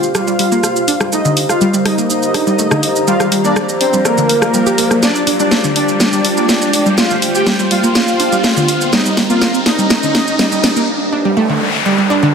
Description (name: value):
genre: melodic techno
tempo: 123 BPM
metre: 4/4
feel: straight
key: unclear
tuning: A4 = 440 Hz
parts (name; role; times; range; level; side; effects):
- soft supersaw; melody; 0.0-10.8 s; Bb3 to G4; -18 LUFS; left 1 dB; low-pass filter, dub echo
- soft supersaw; second line; 0.0-10.8 s; Bb4 to G5; -22 LUFS; right 1 dB; low-pass filter, dub echo
- sweeping resonant pad; sustained chords; 0.0-10.9 s; Eb4 to C6; -24 LUFS; right 1 dB; chorus
- round analog bass; bass; 0.0-10.8 s; none; barely audible; none; none
- house drum kit; drums; 0.0-10.9 s; hi-hat, rim click, shaker, snare drum; -16 LUFS; equal; studio reverb
- riser and noise sweep; sound effects; 0.1-12.3 s; none; -21 LUFS; equal; none
- warbly tape-like pad; texture; 0.0-10.9 s; G4 to F5; -24 LUFS; left 1 dB; chorus, built-in reverb
- wide unison pluck; arpeggios; 0.1-12.3 s; D3 to G4; -17 LUFS; right 1 dB; dub echo
room: moderate lush hall reverb, RT60 2.3 s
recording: dense, heavily limited modern master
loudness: -11 LUFS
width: side -6 dB against mid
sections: 0.0-12.3 A section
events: build-up 0.0-12.3; filter sweep on supersaw synth 0.0-12.3; filter sweep on analog synth pad 0.0-12.3; riser 0.1-10.9; drum fill 5.0-10.9; noise sweep 10.9-12.3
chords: 0.0 Gm7; 1.1 Eb/G; 3.1 Bbadd9/G; 8.9 Eb/G; 10.9 Dsus4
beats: 0.15 0.64 | 1.12 1.61 2.10 2.59 | 3.08 3.56 4.05 4.54 | 5.03 5.51 6.00 6.49 | 6.98 7.47 7.95 8.44 | 8.93 9.42 9.90 10.39 | 10.88 11.37 11.86 12.34